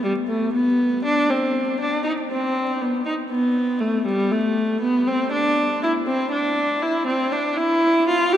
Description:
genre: classical, baroque-style suite movement for unaccompanied viola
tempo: 60 BPM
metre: 4/4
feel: rubato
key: unclear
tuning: A4 = 441 Hz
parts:
  - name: rich viola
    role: solo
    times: 0.0-8.4 s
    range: G3 to G4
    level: -19 LUFS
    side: equal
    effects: none
room: wet cathedral reverb, RT60 7.1 s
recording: minimal, uncompressed stereo recording, vinyl crackle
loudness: -19 LUFS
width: side -10 dB against mid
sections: 0.0-8.4 A section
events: none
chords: none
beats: 0.05 1.06 | 2.07 3.07 4.08 5.09 | 6.09 7.08 8.08

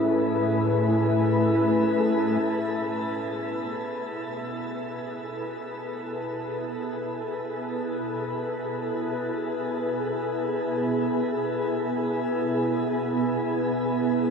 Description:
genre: ambient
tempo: free time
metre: none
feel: none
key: unclear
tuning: A4 = 440 Hz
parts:
  - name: glassy FM pad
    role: sustained chords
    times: 0.0-14.3 s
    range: A2 to B4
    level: -25 LUFS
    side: equal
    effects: ensemble chorus, built-in reverb
  - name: muted felt-like synth keys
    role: arpeggios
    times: 0.0-2.5 s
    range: C#4 to E4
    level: -28 LUFS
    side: right 1 dB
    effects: chorus, tape echo
room: wet shimmer reverb, RT60 8.5 s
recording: cassette tape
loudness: -24 LUFS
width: side -5 dB against mid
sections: 0.0-2.4 A section; 2.4-14.3 B section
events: fade-in on ambient pad 2.4-14.3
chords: 0.0 Amaj9; 2.4 Eadd11/B; 11.6 E/B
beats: free time

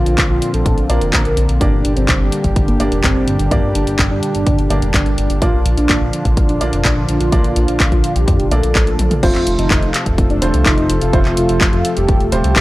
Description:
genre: italo disco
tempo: 126 BPM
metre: 4/4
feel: straight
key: unclear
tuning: A4 = 441 Hz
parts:
  - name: wide unison lead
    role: melody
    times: 0.0-12.6 s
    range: Bb3 to Bb4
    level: -21 LUFS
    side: right 1 dB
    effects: cassette tape, analog delay
  - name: warm analog pad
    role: sustained chords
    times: 0.0-12.6 s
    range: Bb2 to A4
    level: -20 LUFS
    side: equal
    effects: chorus
  - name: warm baby grand piano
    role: stabs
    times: 0.0-12.6 s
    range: A3 to D5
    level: -25 LUFS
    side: right 1 dB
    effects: none
  - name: chorused synth bass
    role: bass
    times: 0.0-12.6 s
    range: Eb1 to F2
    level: -18 LUFS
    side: equal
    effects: none
  - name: house drum kit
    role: drums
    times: 0.1-12.6 s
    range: crash cymbal, handclaps, hi-hat, toms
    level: -20 LUFS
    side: left 1 dB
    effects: none
  - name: electronic kick drum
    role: drums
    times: 0.2-12.6 s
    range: none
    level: -16 LUFS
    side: equal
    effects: none
room: digital ambience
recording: dry, gritty hardware recording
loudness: -12 LUFS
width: side -18 dB against mid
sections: 0.0-9.2 A section; 9.2-12.6 B section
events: drum fill 9.0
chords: 0.0 Bb; 1.6 Gm; 5.4 Bb; 9.2 F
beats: 0.18 0.66 1.13 | 1.61 2.09 2.56 3.04 | 3.52 3.99 4.47 4.94 | 5.42 5.90 6.37 6.85 | 7.32 7.80 8.28 8.75 | 9.23 9.71 10.18 10.66 | 11.13 11.61 12.09 12.56

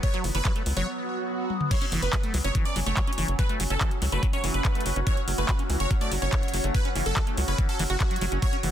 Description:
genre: psychedelic trance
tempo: 143 BPM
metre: 4/4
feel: straight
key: F# minor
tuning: A4 = 440 Hz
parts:
  - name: supersaw stab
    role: melody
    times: 0.0-8.6 s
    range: F#4 to D5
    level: -33 LUFS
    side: right 2 dB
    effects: phaser, sidechain pumping, ping-pong delay
  - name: overtone-sweeping drone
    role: sustained chords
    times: 0.0-8.7 s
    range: F#3 to E4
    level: -34 LUFS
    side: right 1 dB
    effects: chorus, built-in reverb, phaser, sidechain pumping
  - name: electronic kick drum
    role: drums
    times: 0.0-8.5 s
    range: none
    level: -26 LUFS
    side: equal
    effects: none
  - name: garage drum kit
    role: drums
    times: 0.0-8.7 s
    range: crash cymbal, handclaps, hi-hat, toms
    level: -32 LUFS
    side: left 1 dB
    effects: none
  - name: liquid acid bass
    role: riff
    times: 0.1-8.7 s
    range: E3 to F#4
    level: -34 LUFS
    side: equal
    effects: phaser, auto-pan, sidechain pumping, ping-pong delay
  - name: tight sequencer bass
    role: bass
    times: 0.2-8.7 s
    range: F#1 to C#2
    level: -28 LUFS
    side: equal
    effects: none
  - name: swell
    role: sound effects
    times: 1.0-1.7 s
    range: none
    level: -35 LUFS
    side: right 4 dB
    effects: none
  - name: granular cloud pad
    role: texture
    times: 3.3-8.7 s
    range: F#4 to F#5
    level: -37 LUFS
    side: equal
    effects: built-in reverb, sidechain pumping
room: little or no reverb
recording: dense, heavily limited modern master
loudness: -23 LUFS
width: side -10 dB against mid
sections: 0.0-1.7 A section; 1.7-8.7 B section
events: break 0.9-1.7; swell 1.0-1.7; drum fill 1.5; drop 1.7-8.7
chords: 0.0 F#5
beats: | 0.03 0.45 0.87 1.29 | 1.71 2.13 2.55 2.97 | 3.39 3.81 4.23 4.65 | 5.07 5.49 5.91 6.33 | 6.75 7.17 7.58 8.00 | 8.42

